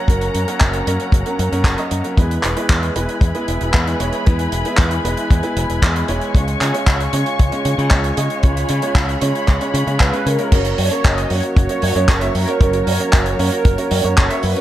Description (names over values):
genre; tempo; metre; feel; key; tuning
italo disco; 115 BPM; 4/4; straight; unclear; A4 = 440 Hz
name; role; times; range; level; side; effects
muted studio string section; sustained chords; 0.0-14.6 s; F#3 to C#6; -25 LUFS; left 2 dB; none
clear grand piano; stabs; 0.0-14.6 s; F#3 to E#5; -23 LUFS; right 2 dB; none
modern bright fingered electric bass; bass; 0.1-14.5 s; E1 to C#3; -21 LUFS; equal; none
damped 70s drum kit; drums; 0.1-14.6 s; crash cymbal, handclaps, hi-hat; -22 LUFS; right 1 dB; gated reverb
kick drum; drums; 0.1-14.3 s; none; -13 LUFS; equal; none
mellow synth brass; melody; 10.0-14.6 s; A#4 to D#5; -22 LUFS; right 2 dB; chorus, tape echo
room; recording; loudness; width
small room ambience; none; -14 LUFS; side -13 dB against mid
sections
0.0-10.5 A section; 10.5-14.6 B section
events
none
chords
0.0 F#; 2.2 E; 6.3 C#; 10.5 F#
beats
| 0.09 0.61 1.13 1.65 | 2.17 2.70 3.22 3.74 | 4.26 4.78 5.30 5.83 | 6.35 6.87 7.39 7.91 | 8.44 8.96 9.48 10.00 | 10.52 11.04 11.57 12.09 | 12.61 13.13 13.65 14.18